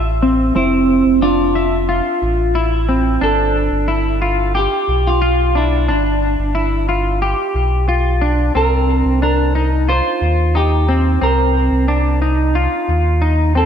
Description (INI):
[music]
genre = dream pop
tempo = 90 BPM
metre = 4/4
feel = straight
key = F major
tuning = A4 = 442 Hz
[part]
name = semi-hollow electric guitar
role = melody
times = 0.0-13.7 s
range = D4 to C5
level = -20 LUFS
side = equal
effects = ping-pong delay
[part]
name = semi-hollow electric guitar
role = arpeggios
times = 0.0-13.7 s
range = C4 to E5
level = -17 LUFS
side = equal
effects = analog chorus, ping-pong delay
[part]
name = sub bass with octave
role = bass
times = 0.0-13.7 s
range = F1 to Eb2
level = -17 LUFS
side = equal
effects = none
[sound]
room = moderate plate reverb, RT60 3.0 s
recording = dreamy mix soaked in reverb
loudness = -13 LUFS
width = side -8 dB against mid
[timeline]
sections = 0.0-13.7 A section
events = none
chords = 0.0 Fmaj7; 3.2 G7; 8.6 Cm7